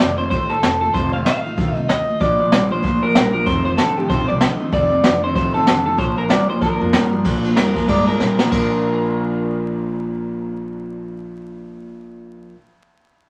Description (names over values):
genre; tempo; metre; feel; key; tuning
rockabilly; 190 BPM; 4/4; swing 60% on 8ths; Bb major; A4 = 441 Hz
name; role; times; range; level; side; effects
electric guitar through a small old amp; melody; 0.0-12.5 s; G4 to F5; -23 LUFS; equal; spring reverb
picked steel-string acoustic guitar; accompaniment; 0.0-12.6 s; F2 to F4; -28 LUFS; equal; none
upright bass; bass; 0.0-12.5 s; F1 to Bb2; -29 LUFS; equal; none
jazz brush drum kit; drums; 0.0-8.6 s; crash cymbal, hi-hat, kick drum, ride cymbal, snare drum; -22 LUFS; equal; vintage 12-bit sampler grit
electric guitar through a small old amp; riff; 2.2-12.6 s; F2 to D4; -25 LUFS; equal; spring reverb
room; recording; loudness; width
wet studio reverb, RT60 0.5 s; vinyl crackle; -18 LUFS; mono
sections
0.0-7.3 A section; 7.3-8.5 B section; 8.5-11.1 C section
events
drum fill 8.2-8.5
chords
0.0 F7; 2.2 Bb; 3.5 F7; 6.0 Bb